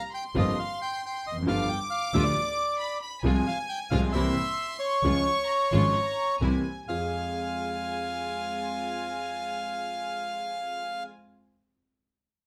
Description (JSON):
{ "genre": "tango", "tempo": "134 BPM", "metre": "4/4", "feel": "rubato", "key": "F minor", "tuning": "A4 = 440 Hz", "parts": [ { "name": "bandoneon", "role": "melody", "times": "0.0-11.0 s", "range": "Db5 to G5", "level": "-32 LUFS", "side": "equal", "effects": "none" }, { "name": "warm studio violin section", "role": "second line", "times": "0.0-11.0 s", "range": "Ab5 to D6", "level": "-38 LUFS", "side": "equal", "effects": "none" }, { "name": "warm concert grand piano", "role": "accompaniment", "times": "0.3-11.0 s", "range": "G1 to Ab4", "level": "-33 LUFS", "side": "equal", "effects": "none" }, { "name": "dark studio string section", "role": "stabs", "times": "0.4-11.0 s", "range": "G3 to F4", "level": "-40 LUFS", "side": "equal", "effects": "slapback echo" }, { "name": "dark double bass", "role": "bass", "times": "0.4-7.1 s", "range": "F1 to F2", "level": "-31 LUFS", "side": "equal", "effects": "none" }, { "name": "vibraphone with medium hard mallets", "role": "second line", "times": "6.9-11.1 s", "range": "Ab4", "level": "-44 LUFS", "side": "equal", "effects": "none" } ], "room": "moderate studio reverb, RT60 0.6 s", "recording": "none", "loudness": "-28 LUFS", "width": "mono", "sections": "0.0-6.9 A section; 6.9-10.5 B section", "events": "none", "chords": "0.0 C7sus4; 1.5 G7; 3.3 Fm/C; 4.1 C7; 5.0 Db; 6.4 C7; 6.9 Fm", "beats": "0.12 0.58 1.03 | 1.48 1.92 2.37 2.81 | 3.26 3.70 4.14 4.59 | 5.04 5.50 5.95 6.41 | 6.87 7.33 7.78 8.22 | 8.67 9.11 9.56 10.01" }